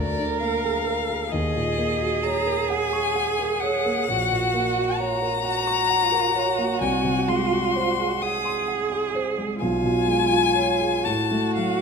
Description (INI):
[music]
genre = classical, slow romantic movement for piano trio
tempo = 43 BPM (dotted quarters)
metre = 6/8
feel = rubato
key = unclear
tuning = A4 = 440 Hz
[part]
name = dark violin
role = melody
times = 0.0-11.8 s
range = D5 to Eb6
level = -24 LUFS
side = left 8 dB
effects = none
[part]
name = warm cello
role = second line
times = 0.0-11.8 s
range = F4 to A#4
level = -25 LUFS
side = right 6 dB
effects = none
[part]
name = dark concert grand piano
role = accompaniment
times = 0.0-11.8 s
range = Bb1 to C#6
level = -26 LUFS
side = equal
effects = none
[sound]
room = wet recital hall reverb, RT60 1.4 s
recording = none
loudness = -20 LUFS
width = side -5 dB against mid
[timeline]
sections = 0.0-11.8 A section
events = none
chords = 0.0 A#7/D; 1.3 D#m7; 4.1 Gb/Bb; 6.8 Ab7/C; 9.6 Db7/Cb; 11.1 Gbm/A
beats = | 1.32 2.70 | 4.09 5.45 | 6.82 8.23 | 9.61 11.05